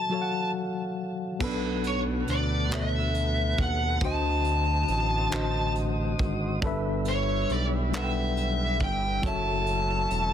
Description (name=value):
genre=slow six-eight R&B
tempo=46 BPM (dotted quarters)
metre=6/8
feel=straight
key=B minor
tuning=A4 = 440 Hz
part: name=high-gain lead guitar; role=melody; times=0.0-10.3 s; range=C#5 to A5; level=-29 LUFS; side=left 1 dB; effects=distortion, tape echo
part: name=mellow tine electric piano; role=accompaniment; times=0.0-10.3 s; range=B2 to G5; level=-31 LUFS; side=left 2 dB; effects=overdrive, medium stereo tremolo
part: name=tonewheel organ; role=sustained chords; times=1.4-10.3 s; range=D3 to Eb5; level=-37 LUFS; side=right 1 dB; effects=slow rotary speaker
part: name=smooth synth bass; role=bass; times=1.4-10.3 s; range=E1 to D#2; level=-29 LUFS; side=right 1 dB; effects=none
part: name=vintage brush drum kit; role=drums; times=1.4-10.3 s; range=crash cymbal, handclaps, hi-hat, kick drum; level=-33 LUFS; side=right 1 dB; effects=soft clipping on snare
room=light reverb, studio reverb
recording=dense, heavily limited modern master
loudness=-25 LUFS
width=side -9 dB against mid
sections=0.0-1.4 A section; 1.4-10.3 B section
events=break 0.0-1.4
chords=0.0 F#m7; 1.4 Bm7; 4.0 D7b9; 6.6 G6; 9.2 F#m7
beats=0.10 | 1.40 2.71 | 4.01 5.32 | 6.62 7.93 | 9.23